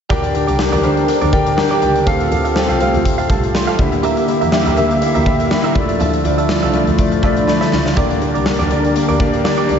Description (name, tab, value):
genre	1980s-style pop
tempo	122 BPM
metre	4/4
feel	swing 55% on 16ths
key	unclear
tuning	A4 = 440 Hz
part	clear grand piano	accompaniment	0.1-9.8 s	D3 to C6	-17 LUFS	left 2 dB	lush chorus
part	warm analog pad	sustained chords	0.1-9.8 s	D3 to E5	-20 LUFS	right 1 dB	chorus
part	direct-recorded clean electric guitar	riff	0.1-9.7 s	F4 to F5	-24 LUFS	right 6 dB	lush chorus, ping-pong delay
part	rich double bass	bass	0.1-9.8 s	C2 to D3	-21 LUFS	equal	none
part	big rock drum kit	drums	0.1-9.8 s	hi-hat, kick drum, snare drum	-20 LUFS	equal	none
room	wet lush hall reverb, RT60 1.9 s, small room ambience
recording	dreamy mix soaked in reverb, nothing above 7.8 kHz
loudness	-13 LUFS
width	side -7 dB against mid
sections	0.1-9.8 A section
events	drum fill 7.5-8.0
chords	0.1 Gm; 2.1 Fadd9; 3.8 Edim/D; 5.8 Dmadd9; 8.0 Gm